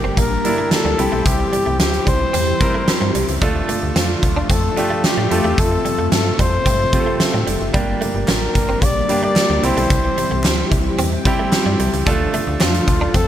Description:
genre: 1980s-style pop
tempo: 111 BPM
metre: 4/4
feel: straight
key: unclear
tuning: A4 = 440 Hz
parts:
  - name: warm flugelhorn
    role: melody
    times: 0.0-13.3 s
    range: F4 to D5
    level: -22 LUFS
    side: left 2 dB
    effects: tape echo
  - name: bright concert grand piano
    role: accompaniment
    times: 0.0-13.3 s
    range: G3 to Bb4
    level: -23 LUFS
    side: right 2 dB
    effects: none
  - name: soft string machine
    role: sustained chords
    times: 0.0-13.3 s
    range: C3 to G4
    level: -26 LUFS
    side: left 1 dB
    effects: phaser, ensemble chorus
  - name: direct-recorded clean electric guitar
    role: riff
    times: 0.0-13.2 s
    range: G3 to D4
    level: -28 LUFS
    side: right 3 dB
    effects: none
  - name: mellow synth brass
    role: stabs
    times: 0.0-13.3 s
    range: F3 to E5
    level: -28 LUFS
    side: left 2 dB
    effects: chorus
  - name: slap-like FM bass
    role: bass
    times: 0.0-13.3 s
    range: F1 to A2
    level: -22 LUFS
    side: equal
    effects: none
  - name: huge arena drum kit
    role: drums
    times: 0.2-13.3 s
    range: hi-hat, kick drum, snare drum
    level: -19 LUFS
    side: equal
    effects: none
  - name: group handclap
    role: percussion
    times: 8.3-12.7 s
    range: none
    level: -34 LUFS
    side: left 4 dB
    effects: none
room: light reverb, small room ambience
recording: none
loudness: -15 LUFS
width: side -11 dB against mid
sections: 0.0-13.3 A section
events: none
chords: 0.0 Gm; 1.0 C; 3.4 Dm; 5.3 F; 7.7 Gm; 9.6 C; 12.1 Dm

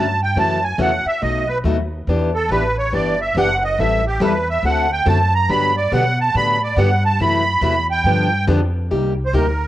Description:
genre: acoustic string swing (jazz manouche)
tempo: 140 BPM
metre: 4/4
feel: swing 63% on 8ths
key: unclear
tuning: A4 = 440 Hz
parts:
  - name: musette accordion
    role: melody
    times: 0.0-9.7 s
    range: G4 to B5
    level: -18 LUFS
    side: right 2 dB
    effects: cassette tape
  - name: picked plugged-in acoustic archtop guitar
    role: accompaniment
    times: 0.0-9.5 s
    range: B2 to A4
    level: -21 LUFS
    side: left 2 dB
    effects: cassette tape
  - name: upright bass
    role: bass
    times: 0.0-9.7 s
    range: F#1 to B2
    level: -21 LUFS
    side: equal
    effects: none
room: moderate spring reverb, RT60 1.3 s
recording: home recording on cassette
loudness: -15 LUFS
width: side -14 dB against mid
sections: 0.0-8.9 A section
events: accordion solo 0.0-8.9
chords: 0.4 F#m7; 1.2 B7; 2.1 Em11; 3.8 Am7; 4.6 D7; 5.5 Gmaj9; 7.2 F#m7b5; 8.1 G7; 8.9 Cm7

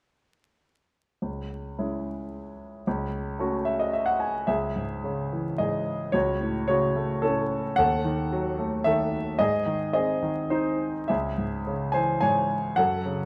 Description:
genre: classical, lyrical solo piano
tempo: 109 BPM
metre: 3/4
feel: uneven beats, rubato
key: C# harmonic minor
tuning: A4 = 440 Hz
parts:
  - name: clear concert grand piano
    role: solo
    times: 1.2-13.3 s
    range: C#2 to G#5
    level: -27 LUFS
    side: equal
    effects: none
room: moderate recital hall reverb, RT60 1.5 s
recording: vinyl crackle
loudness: -27 LUFS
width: mono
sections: 1.2-4.5 A section; 4.5-13.3 B section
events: grand piano fill 3.4-4.5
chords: 1.2 C#m; 2.9 F#m/C#; 4.5 C#m; 6.1 F#m/C#; 7.8 D#dim; 9.4 G#; 11.1 C#m

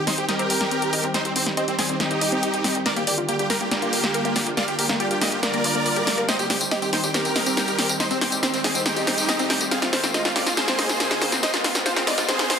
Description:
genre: uplifting trance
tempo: 140 BPM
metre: 4/4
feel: straight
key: C minor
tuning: A4 = 442 Hz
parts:
  - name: big supersaw lead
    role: melody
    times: 0.0-12.6 s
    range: Bb3 to F5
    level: -25 LUFS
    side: right 1 dB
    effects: tape echo
  - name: tight sequencer bass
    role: bass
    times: 0.0-12.6 s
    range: G1 to G2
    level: -38 LUFS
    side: equal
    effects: none
  - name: riser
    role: sound effects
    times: 5.4-12.6 s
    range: none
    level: -36 LUFS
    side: right 1 dB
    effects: none
  - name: lush unison pad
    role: sustained chords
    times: 0.1-12.6 s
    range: D3 to G4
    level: -29 LUFS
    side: equal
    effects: chorus
  - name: analog pluck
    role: arpeggios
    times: 0.1-12.6 s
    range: Bb3 to G5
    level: -29 LUFS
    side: left 2 dB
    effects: chorus, phaser, vintage 12-bit sampler grit, digital delay
  - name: punchy analog drum machine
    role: drums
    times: 0.1-12.6 s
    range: hi-hat, snare drum, tambourine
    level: -23 LUFS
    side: equal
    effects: overdrive
room: moderate lush hall reverb, RT60 1.7 s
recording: dense, heavily limited modern master, high-pass filter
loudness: -20 LUFS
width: side -7 dB against mid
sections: 0.0-12.6 A section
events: build-up 0.0-12.6; drum fill 0.0-12.6; filter sweep on synth arpeggio sound 0.0-12.6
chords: 0.0 Cm; 2.9 Gm7; 6.3 Cm; 9.7 Fm7

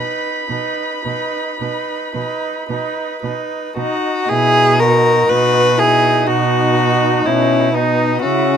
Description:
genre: classical, slow romantic movement for string quartet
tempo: 54-64 BPM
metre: 4/4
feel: rubato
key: B major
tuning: A4 = 439 Hz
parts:
  - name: muted violin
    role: melody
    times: 0.0-8.6 s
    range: B3 to B5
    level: -21 LUFS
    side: left 8 dB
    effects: none
  - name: muted violin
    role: second line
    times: 0.0-8.6 s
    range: D#4 to B4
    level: -16 LUFS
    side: left 1 dB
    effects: none
  - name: muted viola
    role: accompaniment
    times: 0.0-8.6 s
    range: D#4 to E4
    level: -23 LUFS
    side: right 6 dB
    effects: none
  - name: muted cello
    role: bass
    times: 0.5-8.6 s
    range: B2 to C#3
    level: -20 LUFS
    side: right 6 dB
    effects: none
room: light reverb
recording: close, detailed microphones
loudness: -14 LUFS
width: side -8 dB against mid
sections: 0.0-4.3 A section; 4.3-8.6 B section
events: none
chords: 0.0 B

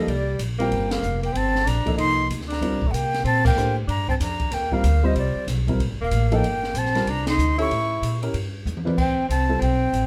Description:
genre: modal jazz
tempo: 189 BPM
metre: 4/4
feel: swing 62% on 8ths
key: C dorian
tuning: A4 = 440 Hz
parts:
  - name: concert flute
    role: melody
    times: 0.0-10.1 s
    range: D5 to Db6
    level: -28 LUFS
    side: equal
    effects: none
  - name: warm tenor saxophone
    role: second line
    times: 0.0-10.1 s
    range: G3 to E4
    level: -29 LUFS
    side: equal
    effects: none
  - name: warm baby grand piano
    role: accompaniment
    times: 0.0-9.6 s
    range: F3 to D5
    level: -30 LUFS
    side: equal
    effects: none
  - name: upright bass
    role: bass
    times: 0.0-10.1 s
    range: Eb1 to C3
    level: -26 LUFS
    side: equal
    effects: none
  - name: open jazz drum kit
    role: drums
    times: 0.1-10.0 s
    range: crash cymbal, hi-hat, kick drum, ride cymbal, snare drum, toms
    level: -32 LUFS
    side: equal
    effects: none
room: moderate club reverb, RT60 0.8 s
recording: none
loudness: -22 LUFS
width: mono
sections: 0.0-9.0 A section; 9.0-10.1 B section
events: band accent 0.9, 3.4, 7.2; drum fill 8.7-9.0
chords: 0.0 Cm9; 7.7 A7b9; 9.0 D7sus4

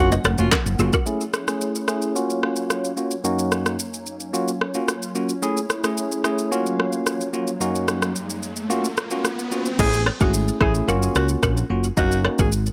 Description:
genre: afrobeats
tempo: 110 BPM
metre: 4/4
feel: straight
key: F# major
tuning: A4 = 440 Hz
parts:
  - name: breathy alto saxophone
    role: melody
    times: 0.0-0.5, 9.8-12.5 s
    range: E#4 to G#4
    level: -28 LUFS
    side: equal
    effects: delay
  - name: bell-like tine electric piano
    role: accompaniment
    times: 0.0-12.5 s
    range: F#2 to G#4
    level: -26 LUFS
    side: equal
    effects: low-pass filter
  - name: hollow soft pad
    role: sustained chords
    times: 0.2-9.8 s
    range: F#2 to F#5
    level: -33 LUFS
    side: equal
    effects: ensemble chorus, low-pass filter
  - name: woody fretless electric bass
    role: bass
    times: 0.0-0.9, 9.8-12.7 s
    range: E#1 to C#2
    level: -24 LUFS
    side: equal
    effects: none
  - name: balafon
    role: riff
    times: 0.1-1.0, 9.8-12.5 s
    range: E4 to D#5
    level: -29 LUFS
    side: equal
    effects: delay
  - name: deep house drum kit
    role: drums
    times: 0.1-12.7 s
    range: crash cymbal, handclaps, kick drum, rim click, shaker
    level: -26 LUFS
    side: equal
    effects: none
  - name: congas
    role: percussion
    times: 0.1-0.7 s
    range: none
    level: -30 LUFS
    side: equal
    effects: none
  - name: riser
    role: sound effects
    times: 7.2-9.8 s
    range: none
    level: -35 LUFS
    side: equal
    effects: none
room: light reverb, digital ambience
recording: none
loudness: -22 LUFS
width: mono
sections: 0.0-1.1 A section; 1.1-9.8 B section; 9.8-12.7 C section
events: filter sweep 1.1-9.8; riser 7.2-9.8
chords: 0.0 F#maj7; 1.1 Amaj7; 2.2 F#maj7; 3.2 D#m7/F#; 4.3 F#maj7; 5.4 Amaj7; 6.5 F#maj7; 7.6 D#m7/F#; 8.7 F#maj7; 9.8 Amaj7; 10.9 F#maj7; 12.0 D#m7/F#

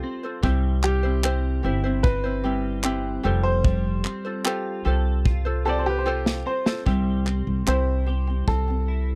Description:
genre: acoustic pop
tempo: 75 BPM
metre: 4/4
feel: straight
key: C major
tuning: A4 = 440 Hz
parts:
  - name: clear upright piano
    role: melody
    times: 0.0-9.2 s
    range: G4 to D5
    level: -32 LUFS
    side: equal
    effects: none
  - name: ukulele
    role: accompaniment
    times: 0.0-9.0 s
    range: C4 to C5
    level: -31 LUFS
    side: equal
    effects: none
  - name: twelve-string electric guitar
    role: arpeggios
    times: 0.0-9.2 s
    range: G3 to A4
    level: -36 LUFS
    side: equal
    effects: analog chorus
  - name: upright bass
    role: bass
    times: 0.4-9.2 s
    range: F1 to C2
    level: -26 LUFS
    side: equal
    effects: none
  - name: modern studio drum kit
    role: drums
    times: 0.4-8.7 s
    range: handclaps, kick drum, snare drum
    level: -25 LUFS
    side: equal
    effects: none
room: little or no reverb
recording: dry, close 1970s-style studio recording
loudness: -24 LUFS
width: mono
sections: 0.0-6.9 A section; 6.9-9.2 B section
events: drum fill 5.3-6.9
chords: 0.4 C; 3.2 Fadd9; 6.9 C

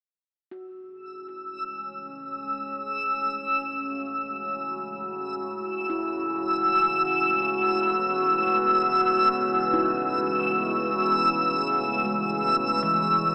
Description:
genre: ambient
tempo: 78 BPM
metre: 4/4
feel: straight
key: unclear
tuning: A4 = 440 Hz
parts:
  - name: warbly tape-like pad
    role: sustained chords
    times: 1.6-13.3 s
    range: A2 to F#4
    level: -32 LUFS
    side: equal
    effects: chorus, built-in reverb
  - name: handpan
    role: arpeggios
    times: 0.5-13.3 s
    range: E3 to F#4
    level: -37 LUFS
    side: equal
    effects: none
  - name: overtone-sweeping drone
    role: drone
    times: 1.2-13.3 s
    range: C#3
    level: -39 LUFS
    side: equal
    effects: chorus, built-in reverb
  - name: backwards swelling texture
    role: texture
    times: 1.1-13.3 s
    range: E6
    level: -26 LUFS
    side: equal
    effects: built-in reverb
room: wet huge ambient reverb, RT60 7.7 s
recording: dreamy mix soaked in reverb, AM radio sound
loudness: -25 LUFS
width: mono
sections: 0.5-13.3 A section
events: fade-in on ambient pad 0.5-13.3; fade-in on synth drone 0.5-13.3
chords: 0.5 F#m9; 12.8 C#m7

